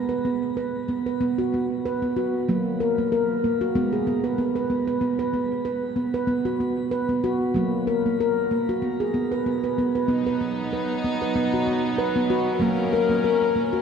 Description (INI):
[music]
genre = world meditative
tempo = 95 BPM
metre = 4/4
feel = swing 55% on 16ths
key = B major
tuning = A4 = 439 Hz
[part]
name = handpan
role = arpeggios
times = 0.0-13.8 s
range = F#3 to B4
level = -22 LUFS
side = equal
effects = tape echo, shimmer reverb
[part]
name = rich chamber string section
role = sustained chords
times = 10.1-13.8 s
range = F#3 to A#4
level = -27 LUFS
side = right 1 dB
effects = shimmer reverb
[sound]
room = wet cathedral reverb, RT60 5.4 s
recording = in a vast, echoing space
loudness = -21 LUFS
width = side -6 dB against mid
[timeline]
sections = 0.0-10.1 A section; 10.1-13.8 B section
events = none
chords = 0.0 B5; 2.5 F#; 3.8 G#m; 5.0 B5; 7.6 F#; 8.8 N.C.; 10.1 B; 12.6 F#